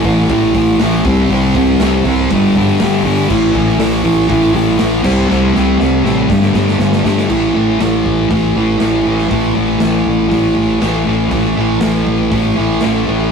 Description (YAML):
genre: garage rock duo or trio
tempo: 120 BPM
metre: 4/4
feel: straight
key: A minor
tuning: A4 = 442 Hz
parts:
  - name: thick fuzz guitar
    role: riff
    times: 0.0-13.3 s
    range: G2 to C4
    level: -12 LUFS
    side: equal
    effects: distortion
  - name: growling fingered electric bass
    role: bass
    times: 0.0-13.3 s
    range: G1 to C2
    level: -19 LUFS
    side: equal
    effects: overdrive
  - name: raw garage drum kit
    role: drums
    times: 0.0-12.9 s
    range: crash cymbal, hi-hat, kick drum, snare drum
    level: -20 LUFS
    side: equal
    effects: none
room: moderate stone room reverb, RT60 1.1 s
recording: rough rehearsal-room recording, warm saturation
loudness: -11 LUFS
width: side -6 dB against mid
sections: 0.0-7.3 A section; 7.3-13.3 B section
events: drum fill 5.3-7.3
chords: 0.0 A5; 1.1 C5; 2.3 G5; 3.3 A5; 5.1 C5; 6.3 G5; 7.3 A5